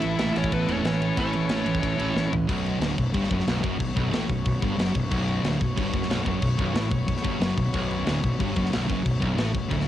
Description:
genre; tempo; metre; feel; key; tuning
heavy metal; 183 BPM; 4/4; straight; B minor; A4 = 440 Hz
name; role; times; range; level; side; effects
high-gain lead guitar; melody; 0.0-2.3 s; B4 to E5; -32 LUFS; right 1 dB; distortion, cassette tape, analog delay
high-gain lead guitar; second line; 0.0-2.3 s; B3 to E4; -35 LUFS; right 2 dB; distortion, cassette tape, analog delay
rich chamber string section; sustained chords; 0.0-9.9 s; A3 to C#5; -36 LUFS; left 2 dB; cassette tape
distorted electric guitar; riff; 0.0-9.9 s; B1 to A4; -29 LUFS; left 7 dB; distortion, cassette tape
sludgy distorted guitar; riff; 0.0-9.9 s; B1 to A3; -28 LUFS; right 5 dB; overdrive, cassette tape
fuzz fingered electric bass; bass; 0.0-9.9 s; B0 to A1; -31 LUFS; left 1 dB; overdrive
tight metal drum kit; drums; 0.0-9.8 s; crash cymbal, kick drum, ride cymbal, snare drum, toms; -29 LUFS; left 1 dB; cassette tape
room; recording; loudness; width
little or no reverb; home recording on cassette; -22 LUFS; side -12 dB against mid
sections
0.0-2.5 A section; 2.5-9.9 B section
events
drum fill 2.2-2.5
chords
0.0 A; 2.5 Bm

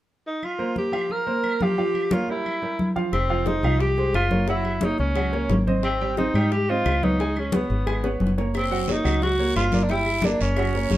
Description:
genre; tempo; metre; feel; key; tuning
Afro-Cuban jazz; 177 BPM; 4/4; straight; F minor; A4 = 440 Hz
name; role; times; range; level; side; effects
breathy tenor saxophone; melody; 0.3-11.0 s; B3 to Bb4; -25 LUFS; equal; none
claves; percussion; 0.4-10.7 s; none; -36 LUFS; right 2 dB; none
congas; percussion; 0.4-11.0 s; none; -27 LUFS; left 1 dB; none
clear baby grand piano; accompaniment; 0.6-11.0 s; F3 to Ab5; -27 LUFS; right 3 dB; none
fingered electric bass; bass; 3.1-11.0 s; F1 to Ab2; -25 LUFS; equal; none
bongos; percussion; 3.1-11.0 s; none; -33 LUFS; left 5 dB; none
guiro; percussion; 8.5-11.0 s; none; -37 LUFS; right 6 dB; none
room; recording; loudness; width
moderate large studio reverb, RT60 0.8 s; minimal, uncompressed stereo recording; -20 LUFS; side -14 dB against mid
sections
0.4-3.1 A section; 3.1-11.0 B section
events
drum fill 8.0-8.5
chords
0.4 C7sus4; 1.8 Gm7b5; 2.5 Fsus24; 3.1 Fm9; 4.5 Gb9; 5.8 Abmaj7; 7.2 Db5; 8.5 Gb; 9.9 Gm

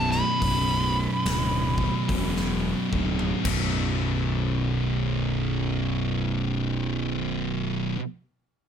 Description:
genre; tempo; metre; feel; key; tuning
stoner and doom metal; 72 BPM; 4/4; swing 63% on 8ths; unclear; A4 = 441 Hz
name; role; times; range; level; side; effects
fuzz lead guitar; melody; 0.0-2.9 s; A5 to B5; -28 LUFS; right 1 dB; distortion, digital delay
thick fuzz guitar; riff; 0.0-8.0 s; B1 to B2; -29 LUFS; left 10 dB; distortion
thick fuzz guitar; riff; 0.0-8.0 s; B1 to B2; -28 LUFS; right 8 dB; distortion
fuzz picked electric bass; bass; 0.0-7.9 s; B0 to E1; -30 LUFS; equal; overdrive
big rock drum kit; drums; 0.1-3.6 s; crash cymbal, hi-hat, kick drum, snare drum, toms; -32 LUFS; left 1 dB; none
room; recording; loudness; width
light reverb; none; -23 LUFS; side -8 dB against mid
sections
0.0-3.8 A section; 3.8-7.1 B section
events
drum fill 2.9-3.8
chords
0.0 Bm; 3.3 B5

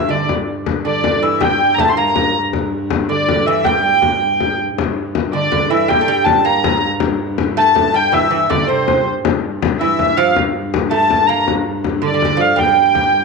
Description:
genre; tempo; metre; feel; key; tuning
medieval dance; 107 BPM (dotted quarters); 6/8; straight; G dorian; A4 = 443 Hz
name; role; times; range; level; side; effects
dark hurdy-gurdy; melody; 0.0-13.2 s; C5 to C6; -15 LUFS; left 2 dB; none
lute; second line; 0.0-13.2 s; C3 to Bb3; -19 LUFS; right 12 dB; none
dark viola da gamba; drone; 0.0-13.2 s; G2; -24 LUFS; equal; stereo widening
frame drum; percussion; 0.3-13.1 s; none; -20 LUFS; left 8 dB; none
room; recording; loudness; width
wet spring reverb, RT60 1.4 s, small room ambience; 1960s-style stereo with parts hard left and right; -13 LUFS; side -3 dB against mid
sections
0.0-4.8 A section; 4.8-13.2 A section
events
none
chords
none

